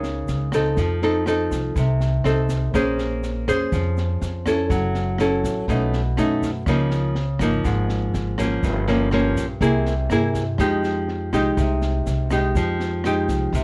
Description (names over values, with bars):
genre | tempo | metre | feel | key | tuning
bossa nova | 122 BPM | 4/4 | straight | F minor | A4 = 439 Hz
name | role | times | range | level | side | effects
nylon-string guitar | accompaniment | 0.0-13.6 s | G2 to C5 | -24 LUFS | equal | none
upright bass | bass | 0.0-13.6 s | Gb1 to G2 | -27 LUFS | equal | none
open jazz drum kit | drums | 0.0-13.6 s | kick drum, rim click, snare drum | -32 LUFS | equal | none
egg shaker | percussion | 0.0-13.6 s | none | -50 LUFS | equal | none
room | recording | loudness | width
little or no reverb | worn, warbling old tape, cassette tape, warbly pitch drift | -22 LUFS | mono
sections
0.0-13.6 A section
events
none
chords
0.0 Gb6 (rootless); 0.8 F7; 2.7 Bbm9; 4.7 Gbm7; 5.7 B9; 6.7 Db69; 8.6 Gm7b5; 9.6 C7b13; 10.6 Fm9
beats
0.28 | 0.77 1.26 1.76 2.25 | 2.74 3.23 3.72 4.21 | 4.70 5.19 5.68 6.17 | 6.67 7.16 7.65 8.14 | 8.63 9.12 9.61 10.10 | 10.59 11.08 11.57 12.06 | 12.55 13.05 13.54